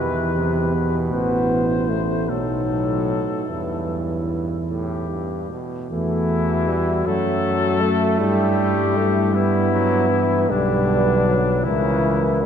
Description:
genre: classical, hymn-like piece for brass band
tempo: 52 BPM (dotted quarters)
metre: 6/8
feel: rubato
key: E minor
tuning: A4 = 441 Hz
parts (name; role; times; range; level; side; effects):
- mellow cornet; melody; 0.0-12.5 s; D4 to C5; -26 LUFS; left 7 dB; none
- mellow French horn section; second line; 0.0-12.5 s; D#4 to B4; -26 LUFS; right 3 dB; none
- bright trombone; accompaniment; 0.0-12.5 s; G2 to A3; -27 LUFS; right 3 dB; none
- dark tuba; bass; 0.0-12.5 s; A1 to G2; -23 LUFS; right 1 dB; none
- warm euphonium; accompaniment; 1.1-12.5 s; E3 to B3; -24 LUFS; left 2 dB; none
room: wet cathedral reverb, RT60 5.8 s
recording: dark, warm production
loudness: -18 LUFS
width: side -8 dB against mid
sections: 0.0-5.9 A section; 5.9-12.5 B section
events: none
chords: 0.0 Em; 1.1 Am; 2.3 B7; 3.5 Em; 5.9 Esus24; 7.1 F#m; 8.2 Em/G; 10.5 Bm; 11.7 C#m6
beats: | 1.13 2.30 | 3.49 4.70 | 5.91 7.06 | 8.20 9.34 | 10.50 11.65

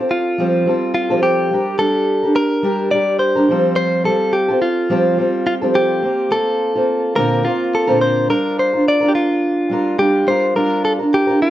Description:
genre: acoustic pop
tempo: 106 BPM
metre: 4/4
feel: swing 55% on 16ths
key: unclear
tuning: A4 = 439 Hz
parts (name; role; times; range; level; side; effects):
- fingerpicked steel-string acoustic guitar; accompaniment; 0.0-11.5 s; Bb2 to Bb4; -17 LUFS; right 1 dB; none
- direct-recorded clean electric guitar; melody; 0.1-11.5 s; F4 to D5; -17 LUFS; left 1 dB; plate reverb
room: moderate studio reverb, RT60 0.7 s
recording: worn, warbling old tape, cassette tape, warbly pitch drift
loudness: -14 LUFS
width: side -13 dB against mid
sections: 0.0-8.3 A section; 8.3-11.5 B section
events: none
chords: 0.0 Fadd9; 1.5 Gm; 3.5 Fadd9; 6.0 Bbadd9; 8.3 Gm7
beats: 0.39 0.95 | 1.51 2.08 2.65 3.21 | 3.77 4.34 4.90 5.47 | 6.03 6.60 7.16 7.73 | 8.29 8.86 9.42 9.99 | 10.55 11.12

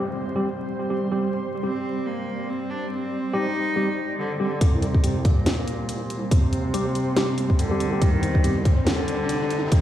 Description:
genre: deep dubstep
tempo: 141 BPM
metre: 4/4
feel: swing 57% on 16ths, half-time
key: C minor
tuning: A4 = 440 Hz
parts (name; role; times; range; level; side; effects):
- granular cloud pad; sustained chords; 0.0-9.8 s; G3 to D5; -30 LUFS; right 1 dB; built-in reverb
- mellow tine electric piano; stabs; 0.0-8.6 s; G3 to G4; -28 LUFS; equal; overdrive, fast stereo tremolo, low-pass filter, dub echo
- downlifter and riser; sound effects; 0.0-1.2, 6.7-9.8 s; none; -35 LUFS; equal; none
- rich cello; melody; 1.6-9.8 s; Bb2 to Eb4; -26 LUFS; equal; low-pass filter, dub echo
- deep soft wobble bass; bass; 4.6-9.8 s; C2 to Eb2; -36 LUFS; equal; none
- electronic kick drum; drums; 4.6-9.8 s; none; -19 LUFS; equal; studio reverb
- garage drum kit; drums; 4.6-9.8 s; hi-hat, snare drum; -28 LUFS; equal; studio reverb
room: moderate echo chamber reverb, RT60 1.4 s, digital ambience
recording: played on a big sound system in a bare room, large studio reverb, vinyl crackle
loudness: -21 LUFS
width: side -12 dB against mid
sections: 0.0-4.6 A section; 4.6-9.8 B section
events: build-up 4.6-9.8; filter sweep on tine electric piano 4.6-9.8; filter sweep on cello 4.6-9.8; riser 6.7-9.8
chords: 0.0 C5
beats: 0.36 0.78 | 1.21 1.63 2.06 2.48 | 2.91 3.34 3.76 4.19 | 4.61 5.04 5.46 5.89 | 6.32 6.74 7.17 7.59 | 8.02 8.44 8.87 9.29 | 9.72

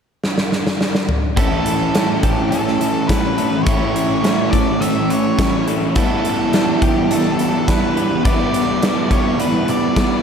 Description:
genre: rock, shoegaze and dream pop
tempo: 105 BPM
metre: 4/4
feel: straight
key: A mixolydian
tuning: A4 = 440 Hz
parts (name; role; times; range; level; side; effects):
- huge arena drum kit; drums; 0.2-10.1 s; hi-hat, kick drum, snare drum, toms; -19 LUFS; equal; none
- octave-fuzz lead guitar; melody; 1.4-10.2 s; G4 to E5; -24 LUFS; equal; distortion, diffuse ambient delay
- twelve-string electric guitar; arpeggios; 1.4-10.2 s; E3 to A4; -26 LUFS; left 6 dB; analog chorus, diffuse ambient delay
- crunchy overdriven guitar; riff; 1.4-10.2 s; A2 to E4; -21 LUFS; left 6 dB; analog chorus
- overdriven electric guitar; riff; 1.4-10.2 s; A2 to E4; -19 LUFS; right 6 dB; reverse reverb
room: wet lush hall reverb, RT60 2.8 s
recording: dreamy mix soaked in reverb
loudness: -15 LUFS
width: side -7 dB against mid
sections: 0.0-1.4 A section; 1.4-10.2 B section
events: drum fill 0.2-1.4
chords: 0.0 N.C.; 1.4 A; 6.0 Em7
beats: 0.22 0.80 | 1.37 1.95 2.52 3.10 | 3.67 4.24 4.82 5.39 | 5.96 6.53 7.11 7.68 | 8.25 8.82 9.39 9.96

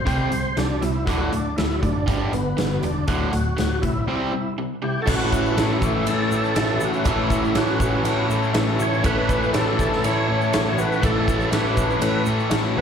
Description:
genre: classic rock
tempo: 121 BPM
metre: 4/4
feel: straight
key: unclear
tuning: A4 = 441 Hz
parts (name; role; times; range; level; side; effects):
- overdriven tonewheel organ; melody; 0.0-12.8 s; B3 to C#5; -26 LUFS; right 1 dB; chorus vibrato, slow rotary speaker, slapback echo
- crunchy overdriven guitar; riff; 0.0-12.8 s; D2 to A4; -26 LUFS; left 9 dB; slapback echo
- overdriven electric guitar; riff; 0.0-12.8 s; D2 to C4; -27 LUFS; right 10 dB; slapback echo
- hollow-body short-scale picked electric bass; bass; 0.0-12.8 s; D1 to A2; -26 LUFS; equal; none
- big rock drum kit; drums; 0.1-12.6 s; crash cymbal, hi-hat, kick drum, ride cymbal, snare drum; -25 LUFS; equal; none
- octave-fuzz lead guitar; second line; 4.8-12.8 s; A3 to A4; -33 LUFS; right 2 dB; none
- honky-tonk upright piano; accompaniment; 5.1-12.8 s; A3 to A4; -31 LUFS; left 2 dB; none
- overdriven tonewheel organ; sustained chords; 5.1-12.8 s; none; barely audible; none; none
- tight distorted guitar; riff; 5.1-12.8 s; A2 to A3; -31 LUFS; equal; none
- egg shaker; percussion; 5.1-12.6 s; none; -42 LUFS; left 2 dB; none
room: light reverb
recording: live gig heard through the venue's PA, club reverb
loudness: -19 LUFS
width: side -7 dB against mid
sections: 0.0-5.1 A section; 5.1-12.8 B section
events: break 4.1-5.1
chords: 0.1 C5; 1.1 D; 2.1 G; 3.1 D; 4.1 C; 5.1 A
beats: 0.07 0.57 | 1.07 1.57 2.08 2.58 | 3.08 3.58 4.08 4.58 | 5.08 5.58 6.08 6.57 | 7.07 7.56 8.06 8.55 | 9.04 9.54 10.04 10.53 | 11.03 11.52 12.02 12.51

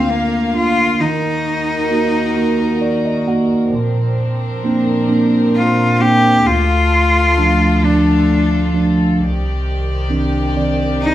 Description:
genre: acoustic folk-pop ballad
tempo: 44 BPM (dotted quarters)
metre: 6/8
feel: straight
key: Bb major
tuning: A4 = 440 Hz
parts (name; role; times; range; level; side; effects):
- rich cello; melody; 0.0-11.1 s; Bb3 to G4; -16 LUFS; left 2 dB; none
- mellow tine electric piano; accompaniment; 0.0-11.1 s; C2 to Gb5; -16 LUFS; right 1 dB; none
- warm studio string section; sustained chords; 0.0-11.1 s; C2 to F5; -20 LUFS; left 1 dB; none
room: wet large studio reverb, RT60 0.9 s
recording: band playing live in one room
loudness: -13 LUFS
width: side -13 dB against mid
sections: 0.0-3.7 A section; 3.7-11.1 B section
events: none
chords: 0.0 Bb/D; 1.0 Ebm; 3.7 Bbadd9; 6.5 Dm; 9.2 Cmadd9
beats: | 1.00 2.36 | 3.73 5.10 | 6.46 7.83 | 9.19 10.55

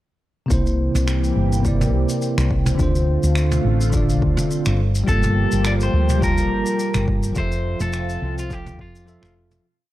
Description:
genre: sunset chillout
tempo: 105 BPM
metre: 4/4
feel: swing 55% on 16ths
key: F major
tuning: A4 = 440 Hz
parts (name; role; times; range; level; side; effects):
- bell-like tine electric piano; accompaniment; 0.5-9.7 s; C3 to A5; -24 LUFS; equal; auto-pan, analog delay
- lush unison pad; sustained chords; 0.5-9.6 s; D3 to G4; -28 LUFS; equal; chorus, phaser
- woody fretless electric bass; bass; 0.5-9.6 s; F1 to F2; -20 LUFS; equal; none
- electronic kick drum; drums; 0.5-8.9 s; none; -24 LUFS; equal; none
- jazz brush drum kit; drums; 0.5-9.6 s; finger snaps, shaker, toms; -28 LUFS; right 1 dB; none
- electric guitar at the edge of break-up; melody; 5.1-9.3 s; F4 to D5; -26 LUFS; left 1 dB; analog delay
room: small room ambience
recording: dry, gritty hardware recording, cassette tape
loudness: -17 LUFS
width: side -15 dB against mid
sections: 0.5-9.6 groove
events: fade-out 6.6-9.6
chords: 0.5 C7; 2.8 Dm7; 4.8 Gm9; 7.4 Fmaj7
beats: | 0.50 1.07 1.65 2.22 | 2.79 3.36 3.93 4.50 | 5.08 5.65 6.22 6.79 | 7.36 7.93 8.50 9.07

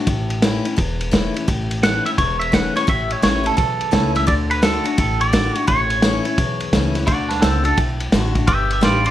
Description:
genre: rockabilly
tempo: 171 BPM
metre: 4/4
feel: swing 64% on 8ths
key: D major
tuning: A4 = 440 Hz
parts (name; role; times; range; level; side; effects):
- picked steel-string acoustic guitar; accompaniment; 0.0-9.1 s; E2 to G4; -24 LUFS; left 4 dB; plate reverb
- upright bass; bass; 0.1-9.1 s; E1 to D2; -23 LUFS; equal; none
- vintage drum kit; drums; 0.1-9.1 s; kick drum, ride cymbal, snare drum; -20 LUFS; equal; none
- twangy electric guitar; melody; 1.8-9.1 s; C4 to F#5; -20 LUFS; right 1 dB; phaser, plate reverb, analog delay
room: light reverb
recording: none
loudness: -16 LUFS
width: side -12 dB against mid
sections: 0.0-7.1 A section; 7.1-9.1 B section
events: clean electric guitar solo 7.1-9.1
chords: 0.1 A; 4.3 D; 5.7 A; 7.1 D; 8.5 G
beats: | 0.08 0.43 0.78 1.13 | 1.48 1.83 2.18 2.53 | 2.88 3.23 3.58 3.93 | 4.28 4.63 4.98 5.33 | 5.68 6.03 6.38 6.73 | 7.08 7.43 7.78 8.13 | 8.48 8.84

